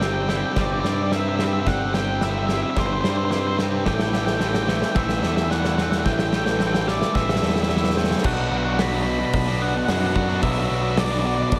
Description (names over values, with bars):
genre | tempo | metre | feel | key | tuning
post-rock | 110 BPM | 4/4 | straight | unclear | A4 = 440 Hz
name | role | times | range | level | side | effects
octave-fuzz lead guitar | melody | 0.0-11.6 s | C5 to B5 | -30 LUFS | equal | distortion, slapback echo
glockenspiel with soft plastic mallets | arpeggios | 0.0-8.2 s | D6 to G6 | -40 LUFS | equal | none
twangy electric guitar | arpeggios | 0.0-8.2 s | G2 to G4 | -36 LUFS | equal | none
distorted electric guitar | riff | 0.0-11.5 s | A2 to F#4 | -28 LUFS | equal | overdrive
fuzz picked electric bass | bass | 0.0-11.6 s | G1 to G2 | -28 LUFS | equal | overdrive
loose indie drum kit | drums | 0.0-11.6 s | crash cymbal, hi-hat, kick drum, snare drum | -27 LUFS | equal | none
tight distorted guitar | riff | 8.2-11.6 s | B2 to F#4 | -31 LUFS | equal | distortion
room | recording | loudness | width
light reverb, studio reverb | none | -22 LUFS | mono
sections
0.0-8.2 A section; 8.2-11.6 B section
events
build-up 0.0-8.2; drum fill 0.0-8.2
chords
0.0 C/G; 3.9 Am7; 8.2 Bm